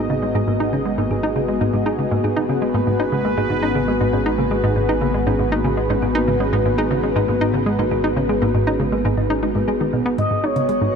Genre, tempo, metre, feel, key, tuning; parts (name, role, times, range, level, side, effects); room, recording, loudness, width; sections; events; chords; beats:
ambient, sequencer-driven space music; 119 BPM; 4/4; straight; G# minor; A4 = 440 Hz
sweeping resonant pad; sustained chords; 0.0-11.0 s; B3 to D#5; -21 LUFS; left 1 dB; chorus
thumb-piano-like synth pluck; arpeggios; 0.0-10.1 s; G#2 to G#4; -25 LUFS; right 2 dB; chorus, auto-pan, tape echo
hollow square pluck; riff; 0.0-10.9 s; G#2 to D#4; -21 LUFS; equal; chorus, tape echo
fat analog bass; bass; 0.0-11.0 s; G#1; -28 LUFS; equal
expressive portamento lead; melody; 10.2-11.0 s; C#5 to D#5; -20 LUFS; right 2 dB; lush chorus, tape echo
electronic hi-hat and bongos; percussion; 10.2-10.9 s; -47 LUFS; right 3 dB; tape echo
twinkling granular texture; texture; 10.5-11.0 s; F#4 to F#5; -48 LUFS; left 4 dB
wet huge ambient reverb, RT60 7.5 s; -17 LUFS; side -6 dB against mid
0.0-10.2 A section
0.0 G#m7
| 0.10 0.60 1.11 1.61 | 2.12 2.62 3.12 3.63 | 4.13 4.64 5.14 5.64 | 6.15 6.65 7.16 7.66 | 8.17 8.67 9.18 9.68 | 10.18 10.69